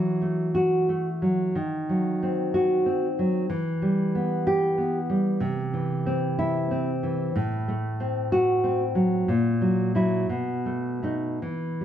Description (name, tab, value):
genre	romantic piece for solo classical guitar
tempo	52-64 BPM (dotted quarters)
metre	6/8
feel	rubato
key	E minor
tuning	A4 = 438 Hz
part	nylon-string guitar	solo	0.0-11.8 s	A2 to G4	-23 LUFS	equal	none
room	moderate recital hall reverb, RT60 1.4 s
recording	dark, warm production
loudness	-23 LUFS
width	side -10 dB against mid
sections	0.0-11.8 A section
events	none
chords	0.0 Esus24; 1.5 D#m6; 3.5 Em; 5.4 C; 7.4 F#dim/A; 9.3 F#7/A#; 10.3 B7